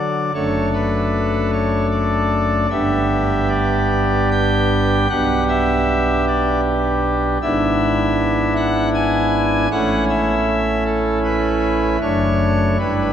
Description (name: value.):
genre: classical, chorale-style piece for pipe organ.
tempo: 77 BPM.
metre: 3/4.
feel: rubato.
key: D major.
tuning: A4 = 440 Hz.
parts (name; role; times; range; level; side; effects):
pipe organ, cornet; solo; 0.0-13.1 s; F#1 to G#5; -16 LUFS; equal; none.
room: wet church reverb, RT60 3.8 s.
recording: none.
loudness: -16 LUFS.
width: side -9 dB against mid.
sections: 0.0-13.1 A section.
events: none.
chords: 0.4 D/F#; 2.7 G; 5.1 G/B; 7.4 E7/G#; 9.7 A; 12.0 D/F#.